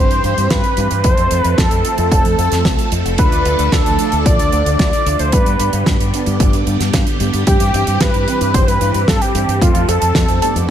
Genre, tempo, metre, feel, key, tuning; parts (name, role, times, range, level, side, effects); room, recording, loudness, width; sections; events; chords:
italo disco; 112 BPM; 4/4; straight; A4 = 440 Hz
wide unison lead; melody; 0.0-10.5 s; F4 to D5; -18 LUFS; equal; ping-pong delay
phased string machine; sustained chords; 0.0-10.7 s; D3 to A4; -23 LUFS; equal; ensemble chorus, phaser
mellow synth brass; stabs; 0.0-10.7 s; G2 to D5; -23 LUFS; right 5 dB; chorus
fingered electric bass with an envelope filter; bass; 0.0-10.7 s; F1 to G2; -18 LUFS; equal; tube saturation
damped 70s drum kit; drums; 0.1-10.7 s; hi-hat, snare drum; -21 LUFS; right 2 dB; small room ambience, gated reverb
electronic kick drum; drums; 0.5-10.3 s; -16 LUFS; equal; small room ambience
light reverb, studio reverb; -12 LUFS; side -10 dB against mid
0.0-10.7 A section
0.0 C/G; 1.0 F; 3.2 Dm; 5.3 G; 7.5 C/G; 9.6 F